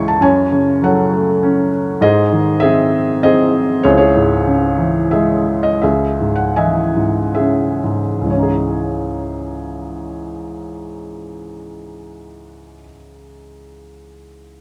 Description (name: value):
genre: classical, lyrical solo piano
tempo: 58-102 BPM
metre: 3/4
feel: rubato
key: C# harmonic minor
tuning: A4 = 440 Hz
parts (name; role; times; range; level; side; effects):
- felt-muted upright piano; solo; 0.0-14.6 s; C#2 to C#6; -16 LUFS; equal; none
room: moderate plate reverb, RT60 3.6 s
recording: heard from further back in the room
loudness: -15 LUFS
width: mono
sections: 0.0-5.8 A section; 5.8-8.3 B section; 8.3-14.4 C section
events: slowing down 3.8-8.3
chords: 0.2 F#madd9; 2.0 G#; 3.8 C#m; 5.8 C#madd9